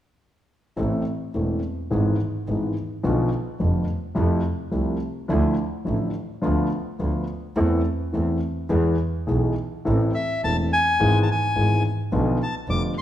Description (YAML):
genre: tango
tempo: 106 BPM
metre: 4/4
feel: rubato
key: A harmonic minor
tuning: A4 = 441 Hz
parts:
  - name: warm concert grand piano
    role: accompaniment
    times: 0.8-12.9 s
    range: E1 to A4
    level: -23 LUFS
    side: equal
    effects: none
  - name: clear double bass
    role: bass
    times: 0.8-12.9 s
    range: E1 to F2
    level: -27 LUFS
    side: right 1 dB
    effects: none
  - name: bandoneon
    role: melody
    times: 10.1-13.0 s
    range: E5 to D6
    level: -23 LUFS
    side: left 2 dB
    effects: none
room: wet recital hall reverb, RT60 1.4 s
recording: recorded in a church or concert hall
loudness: -21 LUFS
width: side -12 dB against mid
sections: 0.8-9.9 A section; 9.9-13.0 B section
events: none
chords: 0.8 Am; 1.9 E/G#; 3.1 Bdim; 4.2 Fmaj7; 5.3 Dmadd9; 6.4 Bdim/D; 7.6 Am/E; 8.7 E; 9.9 Am; 11.0 E/G#; 12.1 Bdim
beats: | 0.78 1.35 1.92 2.49 | 3.05 3.61 4.17 4.73 | 5.30 5.87 6.43 7.00 | 7.56 8.13 8.70 9.28 | 9.86 10.43 11.01 11.57 | 12.13 12.70